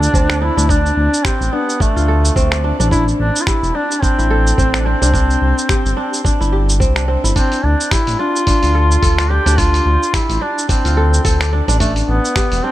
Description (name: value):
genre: organic downtempo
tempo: 108 BPM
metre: 4/4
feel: swing 57% on 16ths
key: D minor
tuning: A4 = 440 Hz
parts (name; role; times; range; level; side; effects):
- clear duduk; melody; 0.0-12.7 s; A3 to G4; -19 LUFS; equal; tape echo, shimmer reverb
- kora; arpeggios; 0.0-12.7 s; C4 to D5; -20 LUFS; equal; tape echo, shimmer reverb
- smooth gliding synth bass; bass; 0.0-12.6 s; E1 to D2; -15 LUFS; equal; sidechain pumping
- dusty soul sampler-style drum kit; drums; 0.0-12.6 s; finger snaps, hi-hat, shaker; -22 LUFS; equal; none
- electronic kick drum; drums; 0.1-12.5 s; none; -16 LUFS; equal; none
room: light reverb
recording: none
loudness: -12 LUFS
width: side -14 dB against mid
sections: 0.0-12.7 A section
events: none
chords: 0.0 Dm7; 2.9 Am; 5.1 Cadd9; 7.4 Dm7; 11.8 N.C.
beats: 0.14 | 0.69 1.25 1.80 2.36 | 2.91 3.47 4.02 4.58 | 5.13 5.69 6.25 6.80 | 7.36 7.91 8.47 9.02 | 9.58 10.13 10.69 11.25 | 11.80 12.36